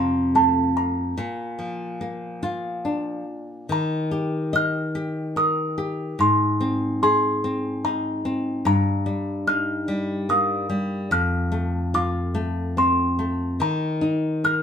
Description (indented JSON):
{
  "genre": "children's music, lullaby",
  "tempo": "72 BPM",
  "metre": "3/4",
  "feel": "straight",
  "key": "unclear",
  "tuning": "A4 = 444 Hz",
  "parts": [
    { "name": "music box", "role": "melody", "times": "0.0-14.6 s", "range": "A5 to F6", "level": "-23 LUFS", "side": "right 1 dB", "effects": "none" },
    { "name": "flamenco guitar", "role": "accompaniment", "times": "0.0-14.6 s", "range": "F2 to Eb5", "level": "-23 LUFS", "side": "left 1 dB", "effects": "none" }
  ],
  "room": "moderate studio reverb, RT60 0.6 s",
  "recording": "band playing live in one room",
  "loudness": "-21 LUFS",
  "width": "side -8 dB against mid",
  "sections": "0.0-3.7 A section; 3.7-14.6 B section",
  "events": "none",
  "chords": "0.0 F; 1.2 Bb; 3.7 Ebadd9; 6.2 Ab; 8.7 Eb/G; 11.1 F; 13.6 Eb5"
}